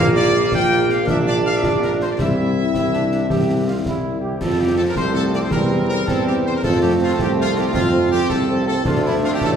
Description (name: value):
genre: military-style march for wind band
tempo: 108 BPM (dotted quarters)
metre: 6/8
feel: straight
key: F major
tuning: A4 = 440 Hz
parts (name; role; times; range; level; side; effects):
- warm trumpet section; melody; 0.0-9.5 s; E4 to G5; -24 LUFS; left 1 dB; none
- mellow French horn section; accompaniment; 0.0-9.3 s; F3 to F4; -26 LUFS; left 4 dB; none
- clear trombone section; sustained chords; 0.0-9.6 s; F3 to G4; -26 LUFS; right 3 dB; none
- warm tuba; bass; 0.0-9.6 s; A1 to F2; -20 LUFS; right 1 dB; none
- concert snare drum, concert bass drum and clash cymbals; drums; 0.5-9.6 s; none; -25 LUFS; left 1 dB; none
- warm euphonium; second line; 5.0-9.6 s; G3 to D4; -22 LUFS; right 2 dB; none
room: wet scoring stage reverb, RT60 1.8 s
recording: recorded in a church or concert hall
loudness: -16 LUFS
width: side -8 dB against mid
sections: 0.0-4.4 A section; 4.4-9.6 B section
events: none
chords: 0.0 Bb; 2.2 C; 4.4 F; 5.5 C7/E; 6.6 F; 8.9 Dm